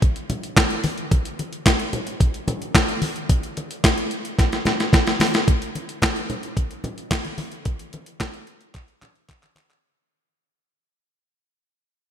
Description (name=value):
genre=funk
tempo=110 BPM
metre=4/4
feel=straight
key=none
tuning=none
part: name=clean 12-bit digital drum machine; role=drums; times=0.0-9.8 s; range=handclaps, hi-hat, kick drum, snare drum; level=-19 LUFS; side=equal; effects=gated reverb
part: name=congas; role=percussion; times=0.0-9.7 s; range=none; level=-29 LUFS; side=left 2 dB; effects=none
room=light reverb, digital ambience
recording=bright 1980s-style digital production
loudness=-20 LUFS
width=side -9 dB against mid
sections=0.0-5.5 A section; 5.5-9.8 B section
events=drum fill 4.4-5.5, 8.7-9.8; fade-out 5.5-9.8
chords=none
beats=0.02 0.57 | 1.11 1.66 2.20 2.75 | 3.29 3.84 4.39 4.93 | 5.48 6.02 6.57 7.11 | 7.66 8.20 8.75 9.29